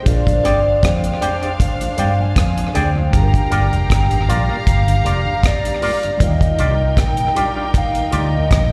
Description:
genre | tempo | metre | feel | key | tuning
lovers rock reggae | 78 BPM | 4/4 | swing 54% on 16ths | Eb major | A4 = 442 Hz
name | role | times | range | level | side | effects
hollow clarinet-like synth lead | melody | 0.0-8.7 s | D5 to Ab5 | -24 LUFS | equal | chorus, phaser, tape echo, slapback echo
warm symphonic string section | second line | 0.0-8.7 s | D4 to Bb5 | -29 LUFS | equal | slapback echo
mellow tine electric piano | accompaniment | 0.0-8.7 s | G3 to F5 | -32 LUFS | equal | tape echo, slapback echo
vintage muted fingered electric bass | bass | 0.1-8.7 s | F1 to G2 | -20 LUFS | equal | none
deep reggae drum kit | drums | 0.1-8.7 s | hi-hat, kick drum, rim click | -20 LUFS | equal | none
mellow tonewheel organ | accompaniment | 0.3-8.4 s | Eb2 to G4 | -31 LUFS | equal | slow rotary speaker, slapback echo
electric guitar with an envelope filter | stabs | 0.4-8.3 s | F4 to G5 | -26 LUFS | equal | harmonic tremolo, slapback echo
room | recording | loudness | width
light reverb | live gig heard through the venue's PA, recital hall reverb | -17 LUFS | mono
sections
0.0-8.7 A section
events
none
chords
0.1 Bb13; 3.1 Gm7; 6.2 Ebmaj9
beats
| 0.07 0.83 1.60 2.37 | 3.13 3.90 4.67 5.44 | 6.21 6.97 7.74 8.51

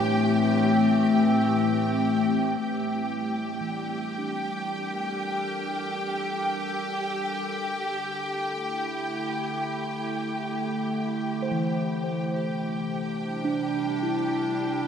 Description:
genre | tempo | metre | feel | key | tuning
ambient | 74 BPM | 3/4 | straight | G dorian | A4 = 440 Hz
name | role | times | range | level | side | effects
warbly tape-like pad | sustained chords | 0.0-14.9 s | A2 to Bb4 | -26 LUFS | left 1 dB | chorus, built-in reverb
rich studio violin section | texture | 0.0-14.9 s | G4 to G5 | -30 LUFS | equal | none
muted felt-like synth keys | arpeggios | 3.0-7.5, 11.4-14.9 s | E3 to C5 | -31 LUFS | equal | chorus, ping-pong delay
room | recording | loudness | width
wet huge ambient reverb, RT60 8.4 s | none | -24 LUFS | side -8 dB against mid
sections
0.0-2.6 A section; 2.6-14.9 B section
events
fade-in on ambient pad 2.6-14.9; fade-in on synth keys 2.6-14.9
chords
0.0 Am7; 2.6 Gm; 7.5 D5; 12.3 C5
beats
| 0.18 0.99 1.80 | 2.61 3.42 4.23 | 5.04 5.85 6.67 | 7.48 8.29 9.10 | 9.91 10.72 11.53 | 12.34 13.15 13.96 | 14.77

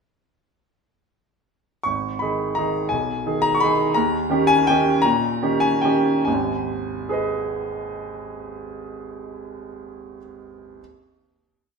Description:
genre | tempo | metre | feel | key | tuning
classical, piano waltz | 132-179 BPM | 3/4 | rubato | G# minor | A4 = 443 Hz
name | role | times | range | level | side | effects
clear grand piano | solo | 1.8-10.8 s | G#1 to C#6 | -20 LUFS | equal | none
room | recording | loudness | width
wet stone room reverb, RT60 1.2 s | minimal, uncompressed stereo recording | -19 LUFS | side -5 dB against mid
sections
1.9-6.3 A section; 6.3-8.7 final chord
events
slowing down 3.4-6.3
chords
1.9 G#m; 2.9 G#m/B; 4.0 D#7; 6.3 G#m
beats
| 1.86 2.22 2.58 | 2.93 3.27 3.62 | 3.97 4.32 4.68 | 5.04 5.42 5.83 | 6.26 6.67 7.09 | 7.50 7.90 8.31

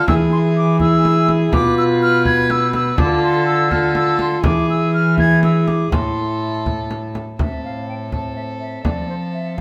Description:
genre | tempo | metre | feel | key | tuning
classical, renaissance-style consort dance | 82 BPM (dotted quarters) | 6/8 | straight | A harmonic minor | A4 = 440 Hz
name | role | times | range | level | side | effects
concert flute | melody | 0.0-9.6 s | C5 to G#6 | -23 LUFS | equal | none
dark violin | second line | 0.0-9.6 s | G#4 to B4 | -27 LUFS | equal | none
dark trombone | accompaniment | 0.0-9.6 s | C4 to F4 | -24 LUFS | equal | none
warm cello | bass | 0.0-9.6 s | A2 to F3 | -22 LUFS | equal | none
frame drum | percussion | 0.1-9.6 s | none | -25 LUFS | equal | none
room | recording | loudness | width
moderate stone room reverb, RT60 1.2 s | none | -17 LUFS | mono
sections
0.0-7.4 A section; 7.4-9.6 B section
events
none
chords
0.1 E; 1.5 B(b5, no3); 3.0 Dm; 4.4 E; 5.9 Am; 8.9 F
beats
| 0.08 0.80 | 1.53 2.26 | 2.98 3.71 | 4.45 5.18 | 5.92 6.66 | 7.40 8.13 | 8.86 9.58

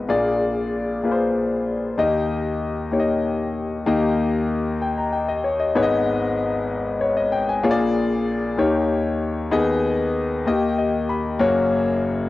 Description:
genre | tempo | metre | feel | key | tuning
gospel | 64 BPM (dotted quarters) | 6/8 | straight | unclear | A4 = 440 Hz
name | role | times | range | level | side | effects
warm concert grand piano | solo | 0.0-12.3 s | F#1 to B5 | -19 LUFS | left 2 dB | cassette tape
room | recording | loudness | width
moderate spring reverb, RT60 1.8 s, small room reverb | home recording on cassette | -19 LUFS | side -16 dB against mid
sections
0.0-3.9 A section; 3.9-12.3 B section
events
grand piano fill 10.5-11.4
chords
0.1 A#7; 2.0 D#; 5.8 G#m; 7.6 A#7; 8.6 D#7; 9.5 G#m/D#; 10.5 D#; 11.4 F#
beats
| 0.09 1.04 | 1.98 2.92 | 3.87 4.81 | 5.75 6.69 | 7.63 8.57 | 9.52 10.46 | 11.40

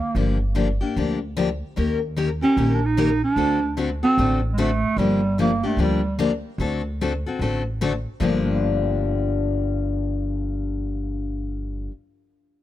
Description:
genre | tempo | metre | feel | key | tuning
acoustic string swing (jazz manouche) | 149 BPM | 4/4 | swing 62% on 8ths | G minor | A4 = 435 Hz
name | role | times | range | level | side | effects
breathy clarinet | melody | 0.0-6.2 s | G3 to Eb4 | -21 LUFS | right 3 dB | none
upright bass | bass | 0.1-11.9 s | G1 to Eb2 | -26 LUFS | equal | none
picked steel-string acoustic guitar | accompaniment | 0.2-11.9 s | G2 to Bb4 | -24 LUFS | left 4 dB | none
room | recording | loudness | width
studio ambience | dry, close 1970s-style studio recording | -20 LUFS | side -13 dB against mid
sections
0.0-8.2 A section; 8.2-11.4 B section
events
none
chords
0.0 Gm7; 1.8 Eb7; 3.4 D7; 5.0 Gm7; 6.6 D7; 8.2 Gm7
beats
| 0.16 0.56 0.96 1.37 | 1.77 2.17 2.57 2.98 | 3.38 3.78 4.18 4.58 | 4.99 5.39 5.79 6.19 | 6.59 7.00 7.40 7.80 | 8.20 8.61 9.01 9.41 | 9.81 10.21 10.62 11.02

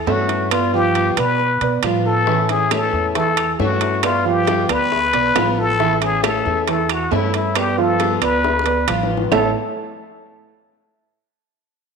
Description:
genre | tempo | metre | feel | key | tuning
latin, Cuban son and guajira | 136 BPM | 4/4 | straight | unclear | A4 = 438 Hz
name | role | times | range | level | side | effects
trumpet with plunger mute | melody | 0.0-9.5 s | E4 to B4 | -20 LUFS | left 4 dB | none
upright bass | bass | 0.0-9.5 s | A1 to B2 | -25 LUFS | left 1 dB | none
picked steel-string acoustic guitar | accompaniment | 0.1-9.5 s | A2 to F4 | -26 LUFS | left 11 dB | none
dark concert grand piano | arpeggios | 0.1-9.5 s | E3 to A5 | -21 LUFS | right 8 dB | tape echo
timbales | percussion | 0.1-9.4 s | none | -25 LUFS | right 11 dB | none
claves | percussion | 0.5-9.4 s | none | -32 LUFS | right 12 dB | none
bongos | percussion | 2.3-9.4 s | none | -27 LUFS | left 12 dB | none
room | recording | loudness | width
wet echo chamber reverb, RT60 1.6 s, small room ambience | 1960s-style stereo with parts hard left and right | -15 LUFS | side -5 dB against mid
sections
0.0-9.3 A section; 9.3-11.1 B section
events
drum fill 8.4-9.3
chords
0.0 A; 0.5 G7; 2.3 A; 4.0 G7; 5.8 A; 7.6 G7; 9.3 A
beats
0.07 | 0.52 0.95 1.40 1.83 | 2.27 2.72 3.16 3.60 | 4.04 4.48 4.92 5.36 | 5.80 6.24 6.68 7.12 | 7.56 8.00 8.44 8.88 | 9.32

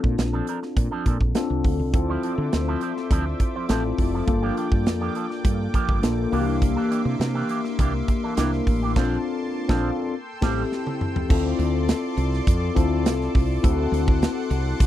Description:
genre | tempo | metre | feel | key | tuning
polished 1980s jazz-funk pop | 103 BPM | 4/4 | straight | D minor | A4 = 440 Hz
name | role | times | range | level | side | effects
mellow tine electric piano | accompaniment | 0.0-14.9 s | Bb3 to Bb4 | -25 LUFS | left 4 dB | analog chorus
electric guitar with an envelope filter | riff | 0.0-10.6 s | E3 to C5 | -30 LUFS | right 5 dB | wide subtle chorus
woody fretless electric bass | bass | 0.0-14.9 s | F1 to D3 | -25 LUFS | right 1 dB | wide subtle chorus
modern studio drum kit | drums | 0.0-14.9 s | crash cymbal, hi-hat, kick drum, snare drum, toms | -22 LUFS | right 1 dB | none
lush unison pad | sustained chords | 1.9-14.9 s | Bb3 to E6 | -34 LUFS | right 1 dB | chorus
room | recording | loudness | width
little or no reverb | dry, close 1970s-style studio recording | -21 LUFS | side -12 dB against mid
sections
0.0-11.3 A section; 11.3-14.9 B section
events
band accent 9.0-11.3; drum fill 10.7-11.3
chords
0.0 Bbmaj9; 1.9 Dm9; 4.3 Gm7; 6.3 C9; 9.0 Bbmaj9; 10.1 Am7; 11.3 Dm7; 13.6 D7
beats
0.19 0.77 1.35 | 1.94 2.52 3.11 3.69 | 4.28 4.86 5.45 6.03 | 6.62 7.20 7.79 8.37 | 8.96 9.54 10.13 10.71 | 11.30 11.88 12.47 13.05 | 13.64 14.22 14.80

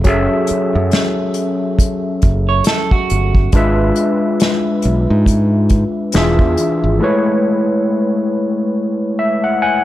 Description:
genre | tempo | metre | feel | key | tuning
R&B, neo-soul | 69 BPM | 4/4 | swing 57% on 16ths | F# minor | A4 = 440 Hz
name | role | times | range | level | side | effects
overdriven tine electric piano | accompaniment | 0.0-9.8 s | E3 to G#5 | -15 LUFS | left 1 dB | analog chorus
modern bright fingered electric bass | bass | 0.0-7.0 s | E1 to G#2 | -15 LUFS | equal | none
unplugged drum kit | drums | 0.0-6.8 s | hi-hat, kick drum, snare drum | -15 LUFS | equal | none
electric guitar through a small old amp | second line | 2.5-3.5 s | F#4 to C#5 | -19 LUFS | right 8 dB | none
room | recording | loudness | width
light reverb, small room ambience | dark, warm production | -13 LUFS | side -14 dB against mid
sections
0.0-9.8 A section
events
drums muted 7.0-9.8; tine electric piano fill 8.7-9.8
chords
0.0 F#m9; 3.5 E7b9/G#; 6.1 E7b9; 7.0 Amaj7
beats
| 0.05 0.92 1.79 2.66 | 3.53 4.40 5.27 6.14 | 7.01 7.88 8.75 9.62

